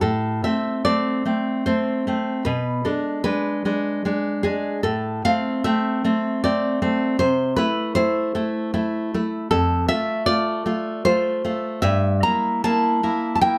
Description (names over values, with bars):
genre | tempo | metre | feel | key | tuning
romantic piece for solo classical guitar | 76 BPM | 3/4 | uneven beats, rubato | A minor, F major from 9.5 s | A4 = 440 Hz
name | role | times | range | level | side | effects
nylon-string guitar | solo | 0.0-13.6 s | F2 to Bb5 | -22 LUFS | equal | none
room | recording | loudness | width
wet small room reverb, RT60 0.5 s | none | -22 LUFS | mono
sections
0.0-13.6 A section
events
none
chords
0.0 Am; 2.5 Bm6; 4.8 Am; 7.2 Am/C; 9.5 F; 11.8 Edim/G